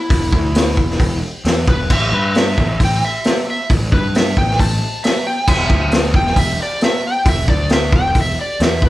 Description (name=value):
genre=blues rock power trio and southern rock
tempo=134 BPM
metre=4/4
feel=straight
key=unclear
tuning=A4 = 440 Hz
part: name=overdriven slide guitar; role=melody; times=0.0-8.9 s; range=E4 to A5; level=-20 LUFS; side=equal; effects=none
part: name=fuzz picked electric bass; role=bass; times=0.1-8.9 s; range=E1 to G2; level=-20 LUFS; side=equal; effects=overdrive
part: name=vintage drum kit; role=drums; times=0.1-8.9 s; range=crash cymbal, hi-hat, kick drum, snare drum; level=-15 LUFS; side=equal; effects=none
room=light reverb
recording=band playing live in one room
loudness=-13 LUFS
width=side -16 dB against mid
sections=0.0-8.9 A section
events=electric slide guitar solo 0.0-8.9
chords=0.0 E7(no3); 1.9 A5; 5.5 E7(no3)